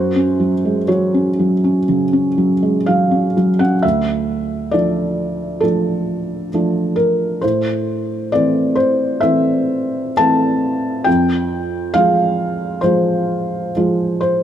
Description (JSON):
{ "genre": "neoclassical minimalist piano", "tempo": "60-70 BPM", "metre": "4/4", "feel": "rubato", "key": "unclear", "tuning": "A4 = 441 Hz", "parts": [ { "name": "felt-muted upright piano", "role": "solo", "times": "0.0-14.4 s", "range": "D2 to A5", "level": "-14 LUFS", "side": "equal", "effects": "none" } ], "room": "light reverb", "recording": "none", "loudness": "-14 LUFS", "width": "side -10 dB against mid", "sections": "0.0-3.8 A section; 3.8-14.4 B section", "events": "none", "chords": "0.0 F#5; 3.8 Dm; 7.4 Am; 11.1 Fm" }